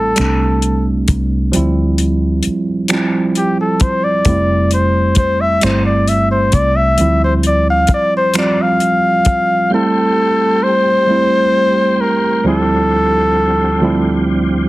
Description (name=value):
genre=slow six-eight R&B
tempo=44 BPM (dotted quarters)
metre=6/8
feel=straight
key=D minor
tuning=A4 = 442 Hz
part: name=warm flugelhorn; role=melody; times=0.0-14.2 s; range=G4 to F5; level=-14 LUFS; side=left 1 dB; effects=slapback echo
part: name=tine electric piano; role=accompaniment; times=0.0-14.7 s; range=D2 to F4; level=-16 LUFS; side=right 2 dB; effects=none
part: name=vintage muted fingered electric bass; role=bass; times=0.0-7.9 s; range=F1 to D2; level=-16 LUFS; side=left 1 dB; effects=none
part: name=damped 70s drum kit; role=drums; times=0.2-9.5 s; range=finger snaps, hi-hat, kick drum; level=-17 LUFS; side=left 1 dB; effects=none
part: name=tonewheel organ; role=sustained chords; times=9.7-14.7 s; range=D3 to C5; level=-24 LUFS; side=left 1 dB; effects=chorus vibrato, fast rotary speaker
room=light reverb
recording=heavily compressed radio sound, multiband compression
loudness=-12 LUFS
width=side -18 dB against mid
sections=0.0-9.7 A section; 9.7-14.7 B section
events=flugelhorn solo 0.0-9.7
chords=0.0 Am7; 1.5 Dm11; 4.3 Fmaj9; 7.0 Dm11; 9.7 Am7; 12.4 Dm11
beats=0.17 | 1.53 2.90 | 4.26 5.62 | 6.99 8.35 | 9.71 11.08 | 12.44 13.80